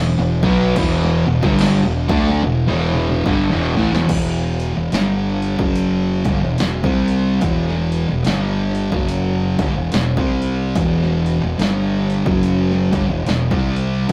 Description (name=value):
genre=stoner and doom metal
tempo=72 BPM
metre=4/4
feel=swing 60% on 8ths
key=E minor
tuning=A4 = 440 Hz
part: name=overdriven semi-hollow guitar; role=riff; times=0.0-4.1 s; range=E2 to D4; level=-22 LUFS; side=equal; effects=none
part: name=thick fuzz guitar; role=riff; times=0.0-14.1 s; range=E2 to D4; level=-24 LUFS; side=equal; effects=distortion
part: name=thick fuzz guitar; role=riff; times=0.0-14.1 s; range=E2 to D4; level=-23 LUFS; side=equal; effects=distortion
part: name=growling fingered electric bass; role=bass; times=0.0-14.1 s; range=E1 to D2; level=-26 LUFS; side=equal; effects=overdrive
part: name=punchy analog drum machine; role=drums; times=0.4-14.1 s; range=crash cymbal, hi-hat, kick drum, snare drum, toms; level=-24 LUFS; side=equal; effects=none
room=moderate stone room reverb, RT60 1.0 s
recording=rough rehearsal-room recording, tube saturation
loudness=-18 LUFS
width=mono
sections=0.0-4.1 A section; 4.1-14.1 B section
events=drum fill 2.4-4.1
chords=0.0 Em